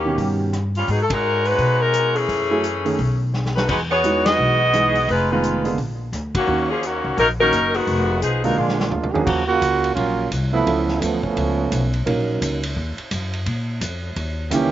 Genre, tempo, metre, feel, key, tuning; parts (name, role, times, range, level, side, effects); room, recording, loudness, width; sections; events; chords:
jazz, big band swing; 172 BPM; 4/4; swing 62% on 8ths; Eb minor; A4 = 442 Hz
clear saxophone section; melody; 0.0-8.9 s; Eb3 to D#5; -18 LUFS; left 1 dB; slapback echo
warm grand piano; accompaniment; 0.0-14.7 s; Cb3 to Bb4; -24 LUFS; right 3 dB; slapback echo
upright bass; bass; 0.0-14.7 s; F1 to Cb3; -24 LUFS; equal
vintage drum kit; drums; 0.2-14.6 s; crash cymbal, hi-hat, kick drum, ride cymbal, rim click, snare drum, toms; -29 LUFS; equal
bright trombone section; second line; 8.9-11.9, 14.5-14.7 s; Db3 to Ab4; -20 LUFS; right 4 dB
little or no reverb; nothing above 7.6 kHz; -18 LUFS; side -12 dB against mid
0.0-9.3 A section; 9.3-14.7 B section
band accent 1.1, 4.2, 6.3; drum fill 3.3-3.7, 8.6-9.3; trombone section solo 9.3-14.7
0.0 Eb7b13; 0.9 Abm7; 2.3 Gbm9; 3.0 B7sus2; 3.7 Emaj9; 5.1 Fm7b5; 5.8 Bb; 6.5 Ebm7; 7.9 Fm7b5; 8.6 Bb7; 9.3 Ebm9; 10.7 Db7alt; 12.1 Gb6; 13.5 Bb5; 14.2 Eb7b9